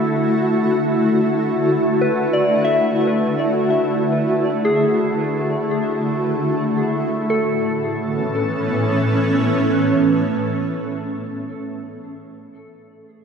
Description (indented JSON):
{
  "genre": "ambient",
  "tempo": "free time",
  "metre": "none",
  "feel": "none",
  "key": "A major",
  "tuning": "A4 = 440 Hz",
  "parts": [
    { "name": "granular cloud pad", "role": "sustained chords", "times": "0.0-11.4 s", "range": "A2 to F#4", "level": "-19 LUFS", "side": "equal", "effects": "built-in reverb, ensemble chorus" },
    { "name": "organ-like drone", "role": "drone", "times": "0.0-10.9 s", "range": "A3 to A4", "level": "-25 LUFS", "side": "right 1 dB", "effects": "ensemble chorus, built-in reverb" },
    { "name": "soft synth bell", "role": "arpeggios", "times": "2.0-13.2 s", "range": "G#4 to E5", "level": "-23 LUFS", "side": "left 1 dB", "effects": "chorus, phaser, ping-pong delay" }
  ],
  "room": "wet lush hall reverb, RT60 2.9 s",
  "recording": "dreamy mix soaked in reverb",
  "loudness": "-16 LUFS",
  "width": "side -6 dB against mid",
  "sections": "0.0-7.3 A section; 7.3-11.5 B section",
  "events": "none",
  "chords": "0.0 D6; 7.3 A",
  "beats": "free time"
}